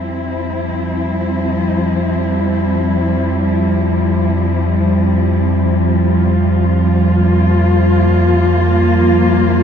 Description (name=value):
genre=dark ambient drone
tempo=free time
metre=none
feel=none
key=unclear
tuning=A4 = 440 Hz
part: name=warm symphonic cello section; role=sustained chords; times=0.0-9.6 s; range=F3 to F4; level=-15 LUFS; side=left 1 dB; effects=none
part: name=deep rumbling drone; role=drone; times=0.0-9.6 s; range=F2 to F3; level=-15 LUFS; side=equal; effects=built-in reverb, lush chorus
room=wet huge ambient reverb, RT60 7.3 s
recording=in a vast, echoing space, lossy compression artefacts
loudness=-12 LUFS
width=side -8 dB against mid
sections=0.0-9.6 A section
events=fade-in on synth drone 0.0-9.6; fade-in on cello section 0.0-9.6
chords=0.0 Fsus2